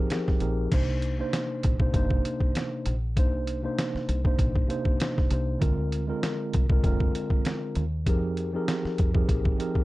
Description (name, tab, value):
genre	hip hop, boom-bap hip-hop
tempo	98 BPM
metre	4/4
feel	swing 54% on 16ths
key	C minor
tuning	A4 = 437 Hz
part	mellow tine electric piano	accompaniment	0.0-9.8 s	C3 to C5	-29 LUFS	right 1 dB	slow stereo tremolo, high-pass filter, low-pass filter
part	trip hop sampler-style drum kit	drums	0.1-9.8 s	crash cymbal, hi-hat, kick drum, snare drum	-25 LUFS	equal	none
part	deep dub fingered electric bass	bass	0.4-9.5 s	F1 to F2	-29 LUFS	equal	none
room	little or no reverb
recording	dark, warm production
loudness	-24 LUFS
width	side -18 dB against mid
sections	0.7-9.8 A section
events	none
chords	0.0 Fm11; 0.7 Cm9; 5.6 Bb9; 8.1 Fm11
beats	0.10 | 0.72 1.33 1.94 2.55 | 3.17 3.78 4.39 5.00 | 5.62 6.23 6.84 7.45 | 8.06 8.68 9.29